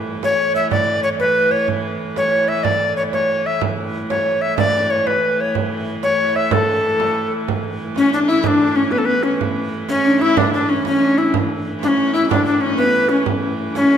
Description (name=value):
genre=medieval dance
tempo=124 BPM (dotted quarters)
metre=6/8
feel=straight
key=A major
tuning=A4 = 440 Hz
part: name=clear hurdy-gurdy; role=drone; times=0.0-14.0 s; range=A2 to E3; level=-25 LUFS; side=right 2 dB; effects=none
part: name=frame drum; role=percussion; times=0.1-13.9 s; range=none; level=-25 LUFS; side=right 7 dB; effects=none
part: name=bright reedy tenor recorder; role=melody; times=0.2-14.0 s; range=C#4 to E5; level=-17 LUFS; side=left 1 dB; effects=none
part: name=warm viola da gamba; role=second line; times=8.0-14.0 s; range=B3 to E4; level=-21 LUFS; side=left 3 dB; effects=none
room=wet recital hall reverb, RT60 1.8 s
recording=minimal, uncompressed stereo recording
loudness=-15 LUFS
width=side -8 dB against mid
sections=0.0-7.5 A section; 7.5-14.0 A section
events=none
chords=none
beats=0.23 | 0.71 1.19 | 1.68 2.16 | 2.64 3.13 | 3.61 4.09 | 4.58 5.06 | 5.54 6.03 | 6.51 6.99 | 7.47 7.96 | 8.44 8.92 | 9.40 9.89 | 10.37 10.85 | 11.33 11.82 | 12.30 12.78 | 13.26 13.74